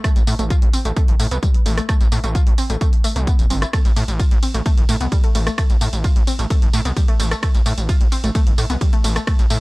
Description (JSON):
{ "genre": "driving peak-time techno", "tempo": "130 BPM", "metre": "4/4", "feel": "straight", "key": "A minor", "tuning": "A4 = 441 Hz", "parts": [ { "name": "warbly dusty pluck", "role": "riff", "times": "0.0-9.5 s", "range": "G3 to F4", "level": "-26 LUFS", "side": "equal", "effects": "chorus, sidechain pumping, analog delay" }, { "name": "electronic kick drum", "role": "drums", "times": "0.0-9.4 s", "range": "none", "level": "-16 LUFS", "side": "equal", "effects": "none" }, { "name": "techno drum kit", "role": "drums", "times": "0.0-9.6 s", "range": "hi-hat, ride cymbal, rim click, tambourine", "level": "-27 LUFS", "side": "right 1 dB", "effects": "sidechain pumping on hats, sidechain pumping on cymbals, sidechain pumping on perc" }, { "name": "gritty driven synth bass", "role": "bass", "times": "0.2-9.6 s", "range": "E1 to A2", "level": "-21 LUFS", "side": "equal", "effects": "sidechain pumping" } ], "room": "little or no reverb", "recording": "dry, gritty hardware recording, transformer saturation, cassette tape", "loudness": "-15 LUFS", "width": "side -23 dB against mid", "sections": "0.0-9.6 A section", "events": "none", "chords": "0.0 A5" }